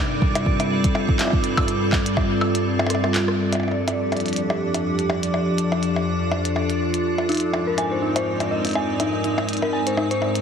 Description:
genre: IDM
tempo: 123 BPM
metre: 4/4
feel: swing 56% on 16ths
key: F mixolydian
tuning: A4 = 440 Hz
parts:
  - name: icy glass pad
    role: sustained chords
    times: 0.0-10.4 s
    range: F2 to Bb4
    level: -22 LUFS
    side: equal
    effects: chorus, built-in reverb
  - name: bubbling stepped-filter texture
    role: texture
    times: 0.0-10.4 s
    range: D5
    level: -30 LUFS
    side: right 2 dB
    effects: chorus, built-in reverb
  - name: electronic kick drum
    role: drums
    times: 0.2-2.3 s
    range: none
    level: -22 LUFS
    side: equal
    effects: none
  - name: glitchy drum kit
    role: drums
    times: 0.4-10.4 s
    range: handclaps, hi-hat, percussion blips, rim click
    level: -26 LUFS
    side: left 1 dB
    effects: tape echo
  - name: dark detuned synth bell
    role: arpeggios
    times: 7.3-10.2 s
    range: Eb4 to Ab5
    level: -23 LUFS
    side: left 2 dB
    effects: chorus, tape echo
room: wet echo chamber reverb, RT60 2.4 s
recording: heavily compressed radio sound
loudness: -19 LUFS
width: side -7 dB against mid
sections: 0.0-3.4 A section; 3.4-10.4 B section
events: kick drops out 2.4-3.4; drum fill 2.9-3.4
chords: 0.0 G7sus4; 3.4 F6; 7.3 Abadd9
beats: 0.46 0.95 | 1.44 1.93 2.41 2.90 | 3.39 3.88 4.36 4.85 | 5.34 5.83 6.32 6.80 | 7.29 7.78 8.27 8.76 | 9.24 9.73 10.22

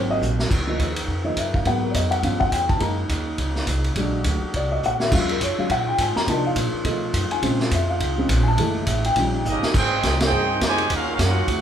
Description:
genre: jazz, big band swing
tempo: 208 BPM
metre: 4/4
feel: swing 60% on 8ths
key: Db major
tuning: A4 = 443 Hz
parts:
  - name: dark upright piano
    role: accompaniment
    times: 0.0-9.4 s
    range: Db3 to Bb5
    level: -23 LUFS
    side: left 1 dB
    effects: none
  - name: warm trombone section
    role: sustained chords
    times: 0.0-11.6 s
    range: Cb3 to Bb4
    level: -31 LUFS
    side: left 1 dB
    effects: none
  - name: upright bass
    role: bass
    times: 0.0-11.6 s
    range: Gb1 to C3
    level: -25 LUFS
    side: right 1 dB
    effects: none
  - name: vintage drum kit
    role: drums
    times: 0.2-11.6 s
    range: crash cymbal, hi-hat, kick drum, ride cymbal, snare drum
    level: -25 LUFS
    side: equal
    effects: none
  - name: clear trumpet section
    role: melody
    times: 9.5-11.6 s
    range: Db4 to Ab5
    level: -23 LUFS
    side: right 3 dB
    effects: none
  - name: bright trombone section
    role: second line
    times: 9.5-11.6 s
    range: C3 to Ab4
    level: -28 LUFS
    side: right 3 dB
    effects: none
room: moderate large studio reverb, RT60 0.8 s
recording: band playing live in one room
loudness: -19 LUFS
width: side -9 dB against mid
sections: 0.5-9.7 A section; 9.7-11.6 B section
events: upright piano solo 0.0-9.7; drum fill 0.2, 4.8, 9.5; band accent 10.2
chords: 0.0 Ab9; 0.5 Db69; 1.7 Abm9; 2.2 G7#11; 2.8 Gb6; 4.0 Bb7b13; 5.1 Ebm11; 6.3 Cm11; 6.9 Cb7#11; 7.4 Bbm7; 8.6 Gbm7; 9.2 Eb7; 9.7 Abmaj7; 10.9 Ebm9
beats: 0.23 | 0.51 0.80 1.09 1.37 | 1.66 1.95 2.24 2.52 | 2.81 3.10 3.39 3.68 | 3.96 4.25 4.54 4.83 | 5.12 5.41 5.70 5.99 | 6.28 6.56 6.85 7.14 | 7.43 7.72 8.01 8.30 | 8.59 8.88 9.17 9.46 | 9.74 10.03 10.32 10.61 | 10.90 11.19 11.48

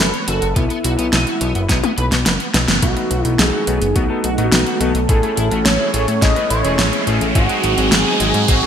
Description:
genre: synthwave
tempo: 106 BPM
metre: 4/4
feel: straight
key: unclear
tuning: A4 = 442 Hz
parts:
  - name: wide unison lead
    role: melody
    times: 0.0-8.7 s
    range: E4 to D#5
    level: -22 LUFS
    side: right 1 dB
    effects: ping-pong delay
  - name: crunchy overdriven guitar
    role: riff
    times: 0.0-8.7 s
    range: G#3 to C#5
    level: -25 LUFS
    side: left 2 dB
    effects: ensemble chorus, low-pass filter, ping-pong delay
  - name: fat analog bass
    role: bass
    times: 0.0-8.6 s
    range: E1 to A2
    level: -20 LUFS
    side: equal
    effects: none
  - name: pop drum kit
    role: drums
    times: 0.1-8.6 s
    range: hi-hat, snare drum, toms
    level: -19 LUFS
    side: equal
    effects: small room ambience, gated reverb
  - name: electronic kick drum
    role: drums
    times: 0.6-8.6 s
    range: none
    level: -18 LUFS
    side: equal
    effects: small room ambience
  - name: analog string pad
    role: sustained chords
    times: 2.8-8.7 s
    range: F#3 to D#4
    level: -25 LUFS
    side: equal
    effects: ensemble chorus, sidechain pumping
  - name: warm electric grand piano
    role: stabs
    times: 2.8-8.7 s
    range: A3 to B4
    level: -24 LUFS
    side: left 3 dB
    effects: low-pass filter, ping-pong delay
  - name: riser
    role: sound effects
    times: 5.1-8.7 s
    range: none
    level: -23 LUFS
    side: right 2 dB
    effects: none
room: moderate plate reverb, RT60 2.6 s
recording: bright 1980s-style digital production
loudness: -14 LUFS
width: side -8 dB against mid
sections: 0.0-2.8 A section; 2.8-8.7 B section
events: drum fill 1.7-2.8; band accent 2.7; filter sweep on analog synth pad 2.8-8.7; filter sweep on electric grand piano 2.8-8.7; filter sweep on overdriven electric guitar 2.8-8.7; riser 5.1-8.7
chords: 0.0 F#m; 0.6 Bsus4; 2.8 B7; 5.1 Amaj7; 7.4 G#7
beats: | 0.56 1.13 1.69 2.26 | 2.83 3.39 3.96 4.52 | 5.09 5.66 6.22 6.79 | 7.35 7.92 8.48

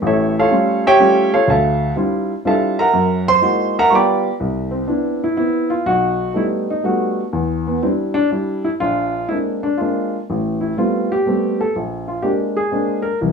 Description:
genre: jazz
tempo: 123 BPM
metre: 3/4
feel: swing 68% on 8ths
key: unclear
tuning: A4 = 437 Hz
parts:
  - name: warm upright piano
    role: solo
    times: 0.0-13.3 s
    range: A1 to D6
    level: -15 LUFS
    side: equal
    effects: none
room: moderate studio reverb, RT60 0.6 s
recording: studio reverb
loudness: -15 LUFS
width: side -6 dB against mid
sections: 0.0-4.4 A section; 4.4-13.3 B section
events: upright piano solo 0.0-4.4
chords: 0.0 A7b13; 1.5 Dm11; 2.9 Gb13; 3.9 G7; 4.4 Cmaj7; 5.9 B7b13; 7.3 Em7; 8.8 Bb9; 10.3 Am9; 11.7 Bb9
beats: | 0.01 0.50 0.99 | 1.48 1.97 2.45 | 2.94 3.43 3.92 | 4.41 4.90 5.38 | 5.87 6.36 6.85 | 7.34 7.83 8.32 | 8.81 9.30 9.79 | 10.28 10.77 11.26 | 11.74 12.23 12.72 | 13.21

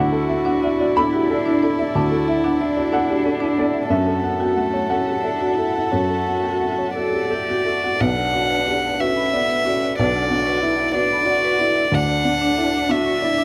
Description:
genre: neoclassical piano and strings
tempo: 61 BPM (dotted quarters)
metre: 6/8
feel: rubato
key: B minor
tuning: A4 = 440 Hz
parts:
  - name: rich violin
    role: melody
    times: 0.0-13.4 s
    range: E4 to F#5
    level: -24 LUFS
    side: equal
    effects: none
  - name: dark cello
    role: second line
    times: 0.0-13.4 s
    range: A3 to A4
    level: -28 LUFS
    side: equal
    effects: none
  - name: warm upright piano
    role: accompaniment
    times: 0.0-13.4 s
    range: B1 to B5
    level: -25 LUFS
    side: equal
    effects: none
  - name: warm chamber string section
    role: sustained chords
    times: 0.0-13.4 s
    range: D3 to F#5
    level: -34 LUFS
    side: equal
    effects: none
  - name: marimba with medium hard mallets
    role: arpeggios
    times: 0.0-13.4 s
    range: D4 to B5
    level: -27 LUFS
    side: equal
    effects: none
room: moderate studio reverb, RT60 0.5 s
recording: none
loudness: -20 LUFS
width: mono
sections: 0.0-8.0 A section; 8.0-13.4 B section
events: none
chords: 0.0 Dadd9; 3.9 F#m7; 8.0 Bm; 11.9 Dsus2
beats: 0.96 | 1.95 2.92 | 3.90 4.90 | 5.92 6.96 | 8.01 9.01 | 9.99 10.95 | 11.93 12.91

